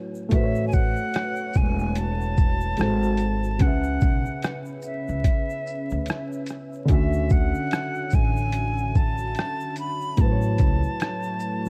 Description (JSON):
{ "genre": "lo-fi hip hop", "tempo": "73 BPM", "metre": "4/4", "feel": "swing 59% on 16ths", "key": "A major", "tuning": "A4 = 441 Hz", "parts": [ { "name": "felt-muted upright piano", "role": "accompaniment", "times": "0.0-11.7 s", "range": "A2 to E5", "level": "-31 LUFS", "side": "equal", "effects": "none" }, { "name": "dark analog pad", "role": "sustained chords", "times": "0.0-11.7 s", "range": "C#3 to E5", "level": "-37 LUFS", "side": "equal", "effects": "chorus" }, { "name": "egg shaker", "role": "percussion", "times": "0.1-11.7 s", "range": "none", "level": "-58 LUFS", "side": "equal", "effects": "none" }, { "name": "breathy bright jazz flute", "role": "melody", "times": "0.3-11.7 s", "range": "E5 to B5", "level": "-33 LUFS", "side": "equal", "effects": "none" }, { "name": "upright bass", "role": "bass", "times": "0.3-11.7 s", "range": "E1 to D2", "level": "-28 LUFS", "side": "equal", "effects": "none" }, { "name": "lo-fi sampler-style drum kit", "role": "drums", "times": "0.3-11.6 s", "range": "hi-hat, kick drum, rim click, shaker", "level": "-24 LUFS", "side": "equal", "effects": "overdrive" } ], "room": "small room ambience", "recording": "dark, warm production, vinyl crackle", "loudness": "-24 LUFS", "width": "mono", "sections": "0.3-11.7 A section", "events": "none", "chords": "0.3 A69; 2.8 G#7b9; 3.6 C#m7; 6.9 Dmaj9; 10.2 A69", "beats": "| 0.32 1.14 1.96 2.78 | 3.61 4.43 5.25 6.07 | 6.89 7.72 8.54 9.36 | 10.18 11.00" }